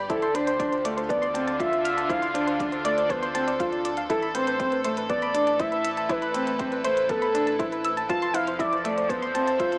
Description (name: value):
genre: piano and strings electronica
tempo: 120 BPM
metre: 4/4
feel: straight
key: D dorian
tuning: A4 = 440 Hz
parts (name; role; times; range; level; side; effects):
- warm studio string section; sustained chords; 0.0-9.8 s; D3 to E5; -35 LUFS; equal; sidechain pumping
- soft round pluck; arpeggios; 0.0-9.8 s; B4 to F6; -34 LUFS; equal; chorus, cassette tape, sidechain pumping, digital delay
- round analog bass; bass; 0.0-9.8 s; F1 to D2; -50 LUFS; equal; sidechain pumping
- warm velvety synth lead; melody; 0.1-9.8 s; A4 to A5; -29 LUFS; equal; chorus
- felt-muted upright piano; riff; 0.1-9.8 s; A3 to F4; -31 LUFS; equal; none
- electronic hi-hat; drums; 0.1-9.8 s; none; -44 LUFS; equal; studio reverb
- electronic kick drum; drums; 0.1-9.7 s; none; -40 LUFS; equal; studio reverb
room: light reverb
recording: small speaker sound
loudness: -25 LUFS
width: mono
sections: 0.0-9.8 A section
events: none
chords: 0.1 Dm7; 4.1 Amadd9; 8.1 Fmaj7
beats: | 0.10 0.60 1.10 1.60 | 2.10 2.60 3.10 3.60 | 4.10 4.60 5.10 5.60 | 6.10 6.60 7.10 7.60 | 8.10 8.60 9.10 9.60